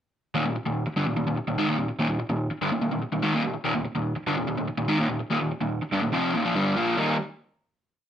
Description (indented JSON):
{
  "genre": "rock",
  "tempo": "145 BPM",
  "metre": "4/4",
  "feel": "straight",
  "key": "Eb major",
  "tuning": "A4 = 437 Hz",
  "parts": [
    { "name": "raw garage guitar", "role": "solo", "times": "0.3-7.1 s", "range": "Eb2 to Eb4", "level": "-24 LUFS", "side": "equal", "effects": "overdrive, slapback echo" }
  ],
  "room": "moderate studio reverb, RT60 0.6 s",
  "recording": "none",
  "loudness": "-24 LUFS",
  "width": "side -9 dB against mid",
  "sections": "0.4-7.0 riff; 7.0-8.1 final chord",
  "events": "none",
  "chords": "0.4 Eb5; 7.0 Eb",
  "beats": "| 0.35 0.76 1.18 1.59 | 2.00 2.41 2.82 3.24 | 3.65 4.06 4.48 4.89 | 5.31 5.72 6.14 6.56 | 6.97"
}